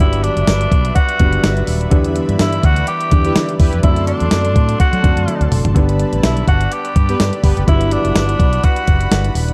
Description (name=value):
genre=1980s-style pop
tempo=125 BPM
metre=4/4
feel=swing 55% on 16ths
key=G major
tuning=A4 = 439 Hz
part: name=raspy tenor saxophone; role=melody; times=0.0-9.4 s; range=D4 to G4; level=-23 LUFS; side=equal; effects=delay
part: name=open-back banjo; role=second line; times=0.0-9.4 s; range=D5 to G5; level=-31 LUFS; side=equal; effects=none
part: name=warm concert grand piano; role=accompaniment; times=0.0-9.5 s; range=D3 to E4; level=-24 LUFS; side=equal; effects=none
part: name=brassy analog pad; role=sustained chords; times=0.0-9.5 s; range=A4 to C6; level=-30 LUFS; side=equal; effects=chorus
part: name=fretless electric bass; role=bass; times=0.0-9.5 s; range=Eb1 to F#3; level=-20 LUFS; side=equal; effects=none
part: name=clean 12-bit digital drum machine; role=drums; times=0.0-9.5 s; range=hi-hat, kick drum, snare drum, tambourine, toms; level=-17 LUFS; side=equal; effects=none
part: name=analog synth brass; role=stabs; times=3.3-3.8, 7.1-7.6 s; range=B3 to B4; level=-28 LUFS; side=equal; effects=chorus, delay
room=light reverb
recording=dark, warm production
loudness=-15 LUFS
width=mono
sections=0.0-9.5 A section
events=drum fill 5.3-5.8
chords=0.0 Gmaj7; 1.9 Em7; 3.8 D7; 5.8 Gmaj7